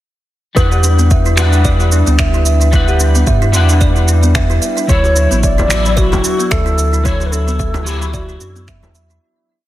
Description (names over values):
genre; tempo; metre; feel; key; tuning
organic downtempo; 111 BPM; 4/4; swing 56% on 16ths; E dorian; A4 = 440 Hz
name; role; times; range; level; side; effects
electric guitar at the edge of break-up; accompaniment; 0.5-9.2 s; F#3 to F#5; -20 LUFS; left 3 dB; ensemble chorus, sidechain pumping, digital delay
kalimba; arpeggios; 0.6-9.2 s; B3 to E5; -20 LUFS; right 2 dB; digital delay
warm sub bass; bass; 0.6-9.2 s; A1 to G2; -13 LUFS; equal; tube saturation, sidechain pumping
electronic cabasa and finger snaps; drums; 0.6-9.2 s; none; -21 LUFS; right 2 dB; small room ambience, soft clipping on snare
electronic kick drum; drums; 0.6-8.8 s; none; -16 LUFS; equal; small room ambience
bronze singing bowl; texture; 0.6-9.2 s; B4; -25 LUFS; equal; none
low Native American-style wooden flute; melody; 4.9-8.6 s; F#4 to D5; -19 LUFS; equal; none
frame drum; percussion; 5.6-8.9 s; none; -21 LUFS; left 1 dB; none
room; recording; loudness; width
light reverb, small room ambience; dense, heavily limited modern master; -10 LUFS; side -14 dB against mid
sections
0.6-9.2 groove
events
fade-out 6.3-9.2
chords
0.6 Em7; 4.9 Dmaj7